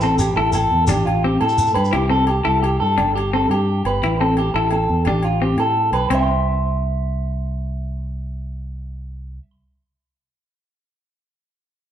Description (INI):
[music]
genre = highlife guitar band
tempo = 115 BPM (dotted quarters)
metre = 12/8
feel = straight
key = C major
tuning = A4 = 441 Hz
[part]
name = semi-hollow electric guitar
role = accompaniment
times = 0.0-6.2 s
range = C4 to E4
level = -23 LUFS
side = left 3 dB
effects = spring reverb
[part]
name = electric guitar at the edge of break-up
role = arpeggios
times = 0.0-9.5 s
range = F4 to C6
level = -20 LUFS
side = right 1 dB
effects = spring reverb
[part]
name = fingered electric bass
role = bass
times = 0.0-9.4 s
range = G1 to A2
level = -21 LUFS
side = equal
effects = none
[part]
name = shekere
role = percussion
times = 0.0-1.9 s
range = none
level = -25 LUFS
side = equal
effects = none
[part]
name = agogo bells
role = percussion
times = 0.2-6.2 s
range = none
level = -28 LUFS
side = left 1 dB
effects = none
[sound]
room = moderate large studio reverb, RT60 1.0 s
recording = band playing live in one room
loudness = -16 LUFS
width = side -10 dB against mid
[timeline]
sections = 0.0-6.1 A section; 6.1-10.3 B section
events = none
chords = 0.0 Am; 0.9 Fadd9/A; 1.9 C; 3.0 Gsus2; 4.0 Am; 5.1 Fadd9/A; 6.1 C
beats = 0.36 0.88 1.40 | 1.93 2.45 2.97 3.49 | 4.01 4.54 5.06 5.58 | 6.11 6.63 7.15 7.68 | 8.20 8.72 9.25